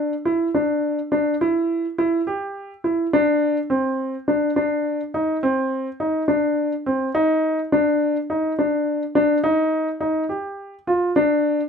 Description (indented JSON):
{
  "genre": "progressive instrumental, progressive",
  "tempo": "104 BPM",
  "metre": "7/4",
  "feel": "straight",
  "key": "unclear",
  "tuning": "A4 = 445 Hz",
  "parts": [
    { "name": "warm baby grand piano", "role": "solo", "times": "0.0-11.6 s", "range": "C4 to G4", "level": "-19 LUFS", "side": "equal", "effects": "none" }
  ],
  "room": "moderate studio reverb, RT60 0.6 s",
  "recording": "minimal, uncompressed stereo recording",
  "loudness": "-19 LUFS",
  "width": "side -6 dB against mid",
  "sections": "0.0-11.7 A section",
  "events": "none",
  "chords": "none"
}